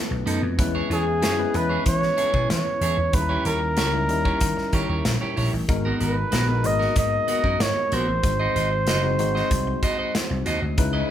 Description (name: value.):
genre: polished 1980s jazz-funk pop.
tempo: 94 BPM.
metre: 4/4.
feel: straight.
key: unclear.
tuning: A4 = 441 Hz.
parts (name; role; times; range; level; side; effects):
warm flugelhorn; melody; 0.0-10.5 s; G#4 to D#5; -24 LUFS; right 1 dB; none.
barky tine electric piano; accompaniment; 0.0-11.1 s; G3 to A#5; -29 LUFS; left 4 dB; medium stereo tremolo.
electric guitar at the edge of break-up; riff; 0.1-11.1 s; B3 to D#5; -29 LUFS; right 2 dB; none.
vintage slap bass; bass; 0.1-11.0 s; F#1 to E3; -26 LUFS; equal; none.
modern studio drum kit; drums; 0.3-10.9 s; hi-hat, kick drum, snare drum; -26 LUFS; equal; none.
room: light reverb.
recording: band playing live in one room.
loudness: -20 LUFS.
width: side -10 dB against mid.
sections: 0.0-11.1 A section.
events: none.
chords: 0.0 B7; 0.6 E6; 3.1 D#7b9; 5.7 G#m9; 8.2 G#7.